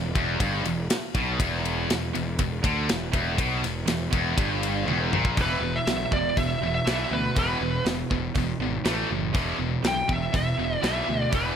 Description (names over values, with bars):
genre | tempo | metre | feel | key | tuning
hard rock | 121 BPM | 4/4 | straight | E minor | A4 = 444 Hz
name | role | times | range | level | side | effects
heavy high-gain guitar | riff | 0.0-11.6 s | E2 to A3 | -30 LUFS | left 12 dB | distortion
tight distorted guitar | riff | 0.0-11.6 s | E2 to A3 | -30 LUFS | right 11 dB | distortion
fuzz picked electric bass | bass | 0.0-11.5 s | E1 to D2 | -30 LUFS | equal | overdrive
tight metal drum kit | drums | 0.2-11.4 s | hi-hat, kick drum, ride cymbal, snare drum, toms | -28 LUFS | equal | none
high-gain lead guitar | melody | 5.4-11.6 s | B4 to G5 | -28 LUFS | right 1 dB | distortion
room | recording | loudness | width
light reverb, studio ambience | none | -23 LUFS | side -8 dB against mid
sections
0.0-5.4 A section; 5.4-11.6 B section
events
drum fill 4.9-5.4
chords
0.0 Em; 5.4 E5; 8.9 A5; 9.3 E5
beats
0.40 0.90 | 1.39 1.89 2.39 2.88 | 3.38 3.88 4.38 4.87 | 5.37 5.87 6.37 6.86 | 7.36 7.86 8.36 8.85 | 9.35 9.85 10.34 10.84 | 11.33